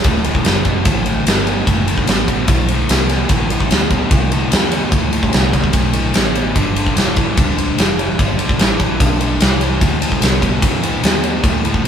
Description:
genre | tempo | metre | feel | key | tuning
blues rock power trio and southern rock | 147 BPM | 4/4 | straight | D mixolydian | A4 = 440 Hz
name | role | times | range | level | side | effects
overdriven electric guitar | riff | 0.0-11.9 s | D2 to E3 | -19 LUFS | equal | none
vintage muted fingered electric bass | bass | 0.0-11.9 s | D1 to E2 | -21 LUFS | equal | none
huge arena drum kit | drums | 0.0-11.9 s | kick drum, ride cymbal, snare drum | -15 LUFS | equal | none
room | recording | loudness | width
light reverb | band playing live in one room | -13 LUFS | side -8 dB against mid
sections
0.0-11.9 A section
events
none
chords
0.0 D7; 6.6 G7; 9.8 D5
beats
| 0.04 0.45 0.85 1.26 | 1.67 2.07 2.48 2.89 | 3.30 3.70 4.11 4.52 | 4.93 5.34 5.75 6.15 | 6.56 6.97 7.38 7.78 | 8.19 8.60 9.00 9.41 | 9.81 10.22 10.63 11.03 | 11.44 11.84

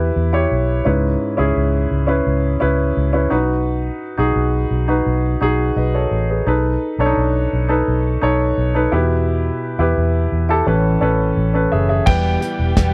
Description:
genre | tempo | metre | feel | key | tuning
piano-driven pop | 86 BPM | 4/4 | straight | B mixolydian | A4 = 440 Hz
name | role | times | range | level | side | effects
warm grand piano | accompaniment | 0.0-12.9 s | G#2 to G5 | -20 LUFS | equal | none
vintage muted fingered electric bass | bass | 0.0-12.9 s | E1 to E2 | -21 LUFS | equal | none
warm studio string section | sustained chords | 12.1-12.9 s | E3 to G4 | -31 LUFS | equal | none
fingerpicked plugged-in steel-string acoustic guitar | riff | 12.1-12.9 s | E2 to G4 | -25 LUFS | equal | none
natural country drum kit | drums | 12.1-12.9 s | crash cymbal, hi-hat, kick drum, snare drum | -21 LUFS | equal | none
room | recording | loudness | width
studio reverb | dry, close 1970s-style studio recording | -18 LUFS | mono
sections
0.0-12.1 A section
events
none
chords
0.0 Em; 0.9 C#m7; 3.3 B; 6.5 B7; 8.9 Em; 10.7 Aadd9; 12.1 Em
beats
0.16 | 0.86 1.56 2.27 2.97 | 3.67 4.37 5.07 5.77 | 6.47 7.17 7.87 8.57 | 9.27 9.97 10.67 11.37 | 12.07 12.77

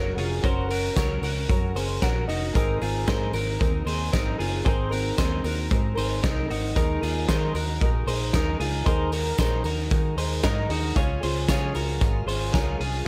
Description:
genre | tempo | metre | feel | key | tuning
jangly indie pop | 114 BPM | 4/4 | straight | Ab mixolydian | A4 = 440 Hz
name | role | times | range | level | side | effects
clear upright piano | accompaniment | 0.0-13.1 s | C4 to Bb5 | -38 LUFS | equal | none
fingerpicked twelve-string acoustic guitar | accompaniment | 0.0-13.1 s | Db3 to Bb4 | -33 LUFS | equal | none
twelve-string electric guitar | arpeggios | 0.0-13.1 s | Eb4 to Db5 | -34 LUFS | equal | none
vintage muted fingered electric bass | bass | 0.0-13.0 s | F1 to Eb3 | -31 LUFS | equal | none
loose indie drum kit | drums | 0.2-12.9 s | hi-hat, kick drum, snare drum | -28 LUFS | equal | none
tambourine | percussion | 0.4-12.7 s | none | -46 LUFS | equal | none
room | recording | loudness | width
little or no reverb | none | -25 LUFS | mono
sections
0.0-13.1 A section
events
upright piano fill 1.8-2.5, 6.0-6.8, 10.2-11.0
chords
0.0 Gb; 2.5 Abadd9; 6.8 Ebsus4; 11.0 Db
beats
| 0.43 0.96 1.49 2.02 | 2.54 3.07 3.60 4.13 | 4.66 5.18 5.71 6.24 | 6.76 7.29 7.82 8.34 | 8.87 9.39 9.92 10.44 | 10.97 11.49 12.02 12.54 | 13.06

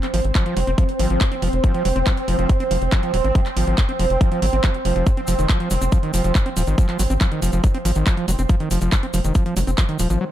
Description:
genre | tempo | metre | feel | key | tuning
psychedelic trance | 140 BPM | 4/4 | straight | F minor | A4 = 440 Hz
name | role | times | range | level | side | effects
bubbling stepped-filter texture | sustained chords | 0.0-10.2 s | C4 | -26 LUFS | right 2 dB | chorus, built-in reverb, sidechain pumping
overdriven acid bass | riff | 0.0-10.2 s | Eb3 to C4 | -25 LUFS | equal | distortion, auto-pan, sidechain pumping, digital delay
techno drum kit | drums | 0.0-10.2 s | handclaps, hi-hat | -28 LUFS | right 1 dB | none
airy breathy pad | texture | 0.0-10.2 s | C5 | -30 LUFS | right 4 dB | chorus, sidechain pumping
tight sequencer bass | bass | 0.1-10.2 s | Eb1 to Ab1 | -20 LUFS | equal | none
electronic kick drum | drums | 0.4-9.9 s | none | -18 LUFS | equal | none
egg shaker | percussion | 5.1-10.2 s | none | -33 LUFS | left 5 dB | none
room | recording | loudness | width
little or no reverb | dark, warm production | -17 LUFS | side -12 dB against mid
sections
0.0-10.3 A section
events
none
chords
0.0 F5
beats
0.35 0.78 1.21 | 1.64 2.07 2.49 2.92 | 3.35 3.78 4.21 4.64 | 5.07 5.49 5.92 6.35 | 6.78 7.21 7.64 8.07 | 8.49 8.92 9.35 9.78 | 10.21

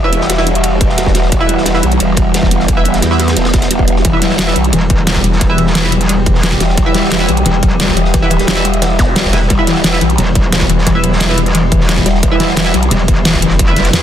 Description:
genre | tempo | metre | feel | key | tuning
dark technical drum and bass | 176 BPM | 4/4 | straight | E minor | A4 = 440 Hz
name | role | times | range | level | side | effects
metallic inharmonic drone | sustained chords | 0.0-14.0 s | E3 to G4 | -18 LUFS | right 1 dB | chorus, built-in reverb, sidechain pumping
filtered dub chord stab | stabs | 0.0-14.0 s | E4 to E5 | -19 LUFS | right 2 dB | lush chorus, digital delay
growl bass | bass | 0.0-12.9 s | E1 to E2 | -15 LUFS | equal | chorus, overdrive, sidechain pumping
crunchy breakbeat drum kit | drums | 0.1-14.0 s | ride cymbal, snare drum | -24 LUFS | equal | high-pass filter on cymbals, high-pass filter on snare, high-pass filter on room
dubstep drum kit | drums | 0.1-14.0 s | hi-hat, snare drum | -16 LUFS | equal | overdrive
electronic kick drum | drums | 0.8-13.7 s | none | -15 LUFS | equal | overdrive
warbly dusty pluck | arpeggios | 4.0-14.0 s | E3 to B3 | -18 LUFS | left 4 dB | chorus, sidechain pumping, digital delay
metallic wobble bass | bass | 4.7-14.0 s | E1 to E2 | -15 LUFS | equal | distortion, chorus
zap | sound effects | 9.0-9.1 s | none | -22 LUFS | equal | none
room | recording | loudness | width
light reverb, digital ambience | dense, heavily limited modern master | -9 LUFS | side -10 dB against mid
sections
0.0-14.0 A section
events
none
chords
0.0 Emadd9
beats
0.30 0.64 0.98 | 1.32 1.66 2.00 2.34 | 2.68 3.02 3.37 3.71 | 4.05 4.39 4.73 5.07 | 5.41 5.75 6.09 6.43 | 6.78 7.12 7.46 7.80 | 8.14 8.48 8.82 9.16 | 9.50 9.84 10.18 10.53 | 10.87 11.21 11.55 11.89 | 12.23 12.57 12.91 13.25 | 13.59 13.93

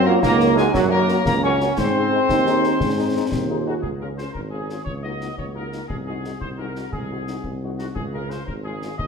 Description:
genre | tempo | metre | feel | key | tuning
military-style march for wind band | 116 BPM (dotted quarters) | 6/8 | straight | Db major | A4 = 442 Hz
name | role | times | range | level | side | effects
clear trumpet section | melody | 0.0-9.1 s | Gb4 to Eb5 | -30 LUFS | left 2 dB | none
wooden piccolo | second line | 0.0-3.6 s | Gb5 to Db6 | -28 LUFS | left 4 dB | none
mellow trombone section | sustained chords | 0.0-3.6 s | Gb3 to Db4 | -20 LUFS | right 1 dB | none
warm tuba | bass | 0.0-9.1 s | Ab1 to Ab2 | -25 LUFS | right 2 dB | none
warm euphonium | second line | 0.1-3.8 s | C4 to F4 | -25 LUFS | right 3 dB | none
warm French horn section | accompaniment | 0.1-8.9 s | Ab3 to Db5 | -29 LUFS | left 5 dB | none
concert snare drum, concert bass drum and clash cymbals | drums | 0.2-9.1 s | none | -30 LUFS | left 2 dB | none
room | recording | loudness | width
wet recital hall reverb, RT60 1.4 s | minimal, uncompressed stereo recording | -19 LUFS | side -5 dB against mid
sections
0.0-3.8 A section; 3.8-9.1 B section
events
none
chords
0.0 Gb; 1.8 Ab; 3.8 Db; 4.9 Ebm7/Db; 5.9 Ab7/C; 8.0 Db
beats
0.23 | 0.75 1.26 | 1.78 2.29 | 2.81 3.32 | 3.84 4.35 | 4.87 5.38 | 5.90 6.41 | 6.93 7.44 | 7.96 8.48 | 8.99

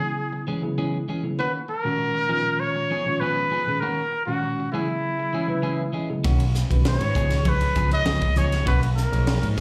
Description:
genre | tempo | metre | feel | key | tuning
electric jazz fusion | 99 BPM | 4/4 | straight | B major | A4 = 444 Hz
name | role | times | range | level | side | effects
clear trumpet | melody | 0.0-9.5 s | E4 to D#5 | -28 LUFS | equal | plate reverb
tine electric piano | accompaniment | 0.0-9.6 s | A#2 to G#5 | -31 LUFS | equal | lush chorus
clean electric guitar | stabs | 0.0-9.6 s | D#3 to G#4 | -33 LUFS | equal | subtle chorus, slapback echo
mellow fretless electric bass | bass | 6.2-9.6 s | B1 to G#2 | -24 LUFS | equal | none
crisp fusion drum kit | drums | 6.2-9.6 s | hi-hat, kick drum, ride cymbal, snare drum | -28 LUFS | equal | none
congas | percussion | 6.2-9.4 s | none | -33 LUFS | equal | none
room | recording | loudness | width
light reverb | live gig heard through the venue's PA, club reverb | -24 LUFS | mono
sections
0.0-9.6 A section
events
tine electric piano fill 5.3-6.2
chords
0.0 E69/C#; 1.4 Bmaj13 (rootless); 2.3 C#9; 3.8 F#69; 4.7 C#m11; 6.2 Bmaj9; 7.2 C#9; 8.7 Bmaj9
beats
0.17 0.78 | 1.39 2.00 2.61 3.21 | 3.82 4.43 5.03 5.64 | 6.25 6.85 7.46 8.06 | 8.67 9.28

